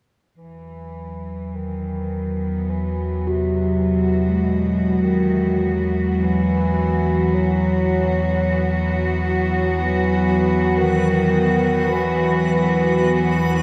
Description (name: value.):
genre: dark ambient drone.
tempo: 52 BPM.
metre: 4/4.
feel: straight.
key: E major.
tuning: A4 = 440 Hz.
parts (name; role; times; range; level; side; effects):
warm bass clarinet; melody; 0.4-13.6 s; B2 to F#3; -27 LUFS; equal; tape echo.
clear chamber cello section; sustained chords; 0.4-13.6 s; E3 to F#4; -28 LUFS; equal; none.
analog drone; drone; 1.0-13.6 s; E2 to F#3; -22 LUFS; equal; chorus.
gamelan-type bronze metallophone; arpeggios; 3.3-11.2 s; G#3 to F#4; -30 LUFS; equal; tape echo.
backwards swelling texture; texture; 10.8-13.6 s; B4; -31 LUFS; equal; built-in reverb.
room: wet huge ambient reverb, RT60 9.0 s.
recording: none.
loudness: -19 LUFS.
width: mono.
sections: 0.4-13.6 A section.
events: fade-in on cello section 0.4-13.6; fade-in on bass clarinet 0.4-13.6.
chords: 0.4 Esus2.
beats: | 0.40 1.55 2.71 3.86 | 5.01 6.17 7.32 8.47 | 9.63 10.78 11.94 13.09.